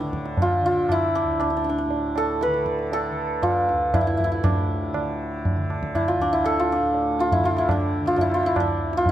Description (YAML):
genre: indian classical, Hindustani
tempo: 119 BPM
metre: 5/4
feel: straight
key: D raga shivaranjani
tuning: A4 = 439 Hz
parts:
  - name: santur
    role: melody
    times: 0.0-9.1 s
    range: D4 to B4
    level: -22 LUFS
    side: equal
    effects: none
  - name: tanpura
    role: drone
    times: 0.0-9.1 s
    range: D2 to D3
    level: -32 LUFS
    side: equal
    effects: none
  - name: tabla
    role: percussion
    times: 0.0-9.1 s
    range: none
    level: -26 LUFS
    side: right 1 dB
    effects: none
room: light reverb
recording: close, detailed microphones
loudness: -20 LUFS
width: side -12 dB against mid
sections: 0.0-9.1 A section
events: none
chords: none